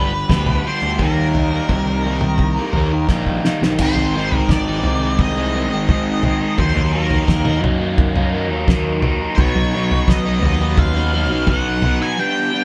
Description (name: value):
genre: psychedelic rock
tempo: 86 BPM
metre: 4/4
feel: straight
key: unclear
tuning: A4 = 439 Hz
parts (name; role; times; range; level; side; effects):
- octave-fuzz lead guitar; melody; 0.0-12.6 s; Bb4 to Ab5; -26 LUFS; equal; distortion
- dark studio string section; sustained chords; 0.0-12.6 s; G3 to B4; -32 LUFS; equal; none
- crunchy overdriven guitar; riff; 0.0-12.6 s; G2 to Eb4; -23 LUFS; equal; phaser
- fuzz picked electric bass; bass; 0.0-12.0 s; G1 to Gb2; -23 LUFS; equal; overdrive
- cloth-damped thuddy drum kit; drums; 0.3-12.0 s; crash cymbal, kick drum, snare drum, toms; -21 LUFS; equal; none
room: light reverb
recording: band playing live in one room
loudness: -18 LUFS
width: mono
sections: 0.0-3.8 A section; 3.8-12.6 B section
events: drum fill 3.1-3.8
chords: 0.0 G; 1.0 Eb; 3.8 Ab; 6.6 Ebm; 9.4 Badd9